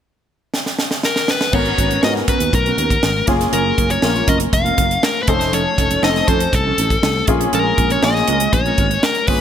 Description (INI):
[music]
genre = polished 1980s jazz-funk pop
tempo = 120 BPM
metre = 4/4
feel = straight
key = G# dorian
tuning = A4 = 440 Hz
[part]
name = crisp fusion drum kit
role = drums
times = 0.5-9.4 s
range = crash cymbal, hi-hat, kick drum, snare drum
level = -19 LUFS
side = right 1 dB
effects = none
[part]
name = dark smooth lead guitar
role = melody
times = 1.1-9.4 s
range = A4 to E#5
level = -19 LUFS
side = left 3 dB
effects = overdrive
[part]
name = warm baby grand piano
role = accompaniment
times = 1.5-9.4 s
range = A3 to A#4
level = -21 LUFS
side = left 2 dB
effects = analog chorus
[part]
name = mellow electric guitar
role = riff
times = 1.5-9.2 s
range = F3 to A#4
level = -24 LUFS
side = right 8 dB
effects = lush chorus
[part]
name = sustaining fretless electric bass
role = bass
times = 1.5-9.4 s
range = E#1 to G#2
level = -22 LUFS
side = equal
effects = none
[part]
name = congas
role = percussion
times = 1.5-9.4 s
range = none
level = -32 LUFS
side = left 8 dB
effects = none
[sound]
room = light reverb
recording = bright 1980s-style digital production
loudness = -14 LUFS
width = side -9 dB against mid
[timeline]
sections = 0.0-1.5 A section; 1.5-9.4 B section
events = drum fill 0.5-1.5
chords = 0.0 N.C.; 1.5 G#m11; 3.3 F#maj7; 5.3 F7b13; 7.3 A#m7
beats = 0.03 0.53 1.03 | 1.53 2.03 2.53 3.03 | 3.53 4.03 4.53 5.03 | 5.53 6.03 6.53 7.03 | 7.53 8.03 8.53 9.03